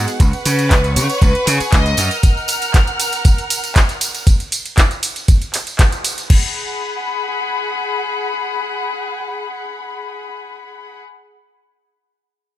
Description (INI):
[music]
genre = nu-disco, nu disco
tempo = 118 BPM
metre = 4/4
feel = straight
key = G# dorian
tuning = A4 = 443 Hz
[part]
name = muted chamber string section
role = sustained chords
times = 0.0-11.0 s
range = G#4 to E#6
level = -22 LUFS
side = left 2 dB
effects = sidechain pumping
[part]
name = gritty slap bass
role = bass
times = 0.0-2.1 s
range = C#2 to C#3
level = -17 LUFS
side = equal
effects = overdrive
[part]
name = pop drum kit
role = drums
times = 0.1-6.4 s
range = crash cymbal, handclaps, hi-hat, ride cymbal, tambourine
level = -20 LUFS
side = right 1 dB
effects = studio reverb
[part]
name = tambourine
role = percussion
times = 0.1-4.2 s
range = none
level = -27 LUFS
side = right 5 dB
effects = none
[part]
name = electronic kick drum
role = drums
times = 0.2-6.4 s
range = none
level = -11 LUFS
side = equal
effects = studio reverb
[part]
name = rich studio violin section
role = melody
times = 0.5-2.2 s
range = G#4 to D#5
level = -22 LUFS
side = left 1 dB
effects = ping-pong delay
[sound]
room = little or no reverb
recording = none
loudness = -14 LUFS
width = side -13 dB against mid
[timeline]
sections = 0.0-6.3 A section; 6.3-10.4 B section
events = drop 0.0-6.3; band accent 5.8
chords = 0.2 C#7sus4; 2.0 F#maj7; 4.3 N.C.; 6.3 G#m7